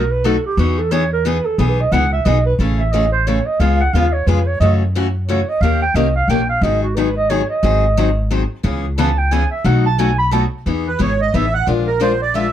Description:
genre	acoustic string swing (jazz manouche)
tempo	178 BPM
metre	3/4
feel	swing 60% on 8ths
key	E major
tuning	A4 = 440 Hz
part	breathy clarinet	second line	0.0-10.4 s	F#4 to B5	-19 LUFS	right 3 dB	none
part	picked steel-string acoustic guitar	accompaniment	0.0-12.5 s	B2 to A#4	-20 LUFS	left 4 dB	none
part	upright bass	bass	0.0-12.5 s	G#1 to F#2	-17 LUFS	equal	none
part	accordion	melody	10.9-12.5 s	A#4 to F#5	-18 LUFS	right 5 dB	light tremolo tuning
room	light reverb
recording	dark, warm production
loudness	-14 LUFS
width	side -10 dB against mid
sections	0.0-2.6 A section; 2.6-10.7 A section; 10.7-12.5 A section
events	clarinet solo 0.0-10.7; accordion solo 10.7-12.5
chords	0.0 B7; 0.6 Emaj7; 2.6 Amaj7; 3.6 C#7; 4.6 F#m7; 5.6 D#7; 6.6 G#m7; 7.6 G#7; 8.6 C#m7; 9.7 B7; 10.7 Emaj7; 11.7 A#7

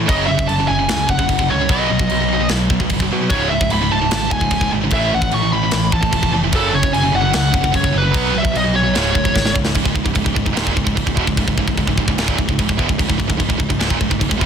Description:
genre	heavy metal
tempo	149 BPM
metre	4/4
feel	straight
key	C# minor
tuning	A4 = 441 Hz
part	scooped high-gain guitar	riff	0.0-14.5 s	C#2 to B3	-22 LUFS	left 12 dB	distortion
part	tight distorted guitar	riff	0.0-14.5 s	C#2 to B3	-21 LUFS	right 13 dB	distortion
part	modern bright picked electric bass	bass	0.0-14.5 s	C#1 to B2	-23 LUFS	left 1 dB	none
part	high-gain lead guitar	melody	0.1-9.5 s	A4 to C#6	-20 LUFS	left 1 dB	distortion, digital delay
part	tight metal drum kit	drums	0.1-14.5 s	crash cymbal, kick drum, snare drum	-20 LUFS	equal	none
room	little or no reverb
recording	dense, heavily limited modern master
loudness	-14 LUFS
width	side -8 dB against mid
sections	0.0-9.8 A section; 9.8-14.5 B section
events	drum fill 9.4-9.8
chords	0.1 F#5; 1.7 B; 3.3 C#5; 4.9 A5; 6.5 F#5; 8.1 B5; 8.9 C#5; 9.8 C#m

